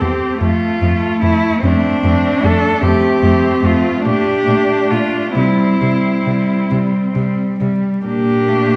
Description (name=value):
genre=classical, lyrical piece for cello ensemble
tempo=44-51 BPM (dotted quarters)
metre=6/8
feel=rubato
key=F major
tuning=A4 = 439 Hz
part: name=clear cello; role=melody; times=0.0-8.8 s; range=C4 to A4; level=-20 LUFS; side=equal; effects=none
part: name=rich cello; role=second line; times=0.0-8.8 s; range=A3 to D4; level=-22 LUFS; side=equal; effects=none
part: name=rich cello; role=accompaniment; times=0.0-8.8 s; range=G3 to C4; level=-20 LUFS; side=equal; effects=none
part: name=rich cello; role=bass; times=0.0-8.8 s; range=E2 to C3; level=-22 LUFS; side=equal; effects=none
room=wet recital hall reverb, RT60 1.6 s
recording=heard from further back in the room, vinyl crackle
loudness=-15 LUFS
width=mono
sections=0.0-8.8 A section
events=none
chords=0.4 F; 4.1 Bbmaj7; 5.4 C; 8.1 Bbmaj7